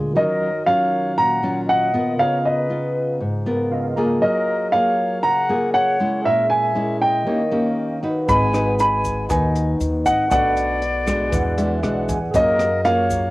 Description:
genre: bossa nova.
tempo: 118 BPM.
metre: 4/4.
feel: straight.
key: Eb minor.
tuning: A4 = 442 Hz.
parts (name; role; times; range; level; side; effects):
barky tine electric piano; accompaniment; 0.0-13.3 s; Db3 to F6; -29 LUFS; right 2 dB; ensemble chorus, cassette tape.
nylon-string guitar; accompaniment; 0.0-13.3 s; Ab2 to Cb5; -23 LUFS; left 1 dB; cassette tape.
upright bass; bass; 0.0-0.1, 8.3-13.3 s; Ab1 to Gb2; -24 LUFS; equal; none.
warm baby grand piano; melody; 0.2-13.3 s; Eb5 to Cb6; -19 LUFS; right 1 dB; cassette tape.
silver concert flute; second line; 0.2-13.3 s; Bb4 to Ab5; -27 LUFS; left 3 dB; cassette tape.
compact cocktail drum kit; drums; 8.3-13.2 s; hi-hat, kick drum, rim click; -28 LUFS; equal; cassette tape.
tube shaker; percussion; 8.3-13.3 s; none; -40 LUFS; left 6 dB; none.
room: light reverb.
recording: home recording on cassette.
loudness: -17 LUFS.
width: side -19 dB against mid.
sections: 0.2-13.3 A section.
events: tine electric piano fill 3.5-4.2, 11.3-12.3.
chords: 0.2 Ebm9; 2.2 Db13; 4.2 Gbmaj9; 6.3 Bbm7b5; 7.3 Eb7; 8.3 Abm7; 10.3 Bm7; 11.3 E9; 12.3 Gbmaj7.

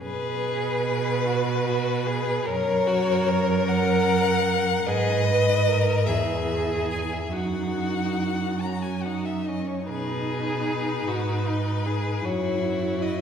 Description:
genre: classical, slow romantic movement for string quartet.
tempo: 47-53 BPM (dotted quarters).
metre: 6/8.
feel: rubato.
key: unclear.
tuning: A4 = 440 Hz.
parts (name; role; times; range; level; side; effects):
rich violin; melody; 0.0-13.2 s; B4 to A#5; -28 LUFS; left 6 dB; none.
warm violin; second line; 0.0-13.2 s; D#4 to B4; -29 LUFS; left 1 dB; none.
warm viola; accompaniment; 0.0-13.2 s; C#4 to B4; -30 LUFS; right 2 dB; none.
rich cello; bass; 0.0-13.2 s; E2 to B2; -27 LUFS; right 3 dB; none.
room: wet concert hall reverb, RT60 2.3 s.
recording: heard from further back in the room.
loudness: -22 LUFS.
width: side -7 dB against mid.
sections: 0.0-13.2 A section.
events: none.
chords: 0.0 G#m7/B; 2.5 F#; 4.9 G#m; 6.1 E; 7.3 D#m/F#; 8.6 F#5; 9.9 B; 12.2 F#7(no3).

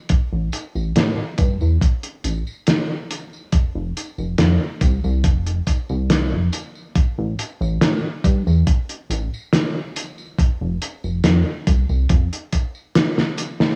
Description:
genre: vaporwave.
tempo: 70 BPM.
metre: 4/4.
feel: straight.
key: unclear.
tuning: A4 = 440 Hz.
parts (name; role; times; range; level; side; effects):
chorused synth bass; bass; 0.1-12.3 s; F1 to A2; -22 LUFS; equal; none.
cloth-damped thuddy drum kit; drums; 0.1-13.8 s; hi-hat, snare drum, tambourine; -23 LUFS; equal; gated reverb.
electronic kick drum; drums; 0.1-12.7 s; none; -19 LUFS; equal; none.
room: light reverb.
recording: none.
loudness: -20 LUFS.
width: mono.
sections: 0.0-13.8 A section.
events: drum fill 13.2-13.8; band accent 13.6.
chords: none.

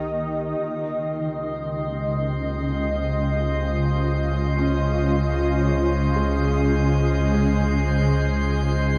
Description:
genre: ambient.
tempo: free time.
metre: none.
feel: none.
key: Db lydian.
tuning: A4 = 440 Hz.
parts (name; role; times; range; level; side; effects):
shimmering ambient pad; sustained chords; 0.0-9.0 s; Db3 to Eb5; -24 LUFS; equal; chorus, built-in reverb.
felt-muted upright piano; arpeggios; 0.0-9.0 s; Db4 to Ab4; -33 LUFS; equal; subtle chorus, tape echo.
warm sub bass; bass; 0.0-9.0 s; C2 to Db2; -28 LUFS; equal; none.
drifting glass-harmonics texture; texture; 1.7-9.0 s; C5 to C6; -34 LUFS; equal; chorus, built-in reverb.
room: wet huge ambient reverb, RT60 7.8 s.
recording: dreamy mix soaked in reverb.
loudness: -23 LUFS.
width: mono.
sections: 0.6-9.0 A section.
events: none.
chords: 0.0 Cm7; 0.6 Dbmaj7.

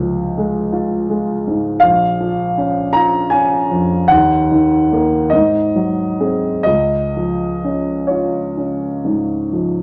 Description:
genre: classical, romantic nocturne for solo piano.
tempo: 39-55 BPM (dotted quarters).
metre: 12/8.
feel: rubato.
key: Db major.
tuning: A4 = 443 Hz.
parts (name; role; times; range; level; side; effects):
warm grand piano; solo; 0.0-9.8 s; Bb1 to Bb5; -16 LUFS; equal; none.
room: moderate studio reverb, RT60 0.6 s.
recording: none.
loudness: -16 LUFS.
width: mono.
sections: 0.0-9.8 A section.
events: none.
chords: 0.0 Db; 1.8 Bbm; 4.1 Ebm; 5.3 Ab7; 6.7 Db.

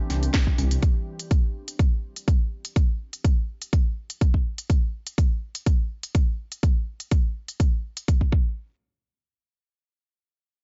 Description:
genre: progressive house.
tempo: 124 BPM.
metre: 4/4.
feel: straight.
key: unclear.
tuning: A4 = 442 Hz.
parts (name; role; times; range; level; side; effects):
evolving wavetable pad; sustained chords; 0.0-0.8 s; E3 to G4; -40 LUFS; equal; chorus, built-in reverb, sidechain pumping.
dark detuned saw bass; bass; 0.1-0.8 s; C2; -25 LUFS; equal; sidechain pumping.
breakbeat sampler-style drum kit; drums; 0.1-0.8 s; hi-hat, snare drum; -41 LUFS; equal; high-pass filter on hats, high-pass filter on snare.
house drum kit; drums; 0.1-8.2 s; hi-hat, snare drum; -34 LUFS; equal; none.
congas; percussion; 0.1-0.7 s; none; -37 LUFS; equal; sidechain pumping on perc.
electronic kick drum; drums; 0.3-8.4 s; none; -23 LUFS; equal; none.
room: little or no reverb.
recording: dark, warm production, nothing above 7.7 kHz.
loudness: -24 LUFS.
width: mono.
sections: 0.0-8.6 A section; 8.6-10.6 B section.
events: none.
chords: 0.0 Cadd9; 0.8 N.C..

